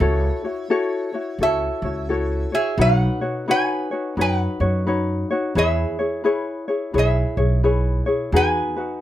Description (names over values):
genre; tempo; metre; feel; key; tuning
Hawaiian; 86 BPM; 4/4; swing 62% on 8ths; E major; A4 = 440 Hz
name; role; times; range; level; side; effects
lap resonator guitar; melody; 0.0-9.0 s; E4 to G#5; -24 LUFS; right 2 dB; none
ukulele; accompaniment; 0.0-9.0 s; D#4 to C#5; -22 LUFS; left 3 dB; none
upright bass; bass; 0.0-8.6 s; B1 to F#2; -22 LUFS; right 1 dB; none
room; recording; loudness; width
little or no reverb; close, detailed microphones; -19 LUFS; side -12 dB against mid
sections
0.0-8.3 A section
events
none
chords
0.0 F#m7/C#; 2.8 Badd9; 5.6 E6; 8.3 Emaj9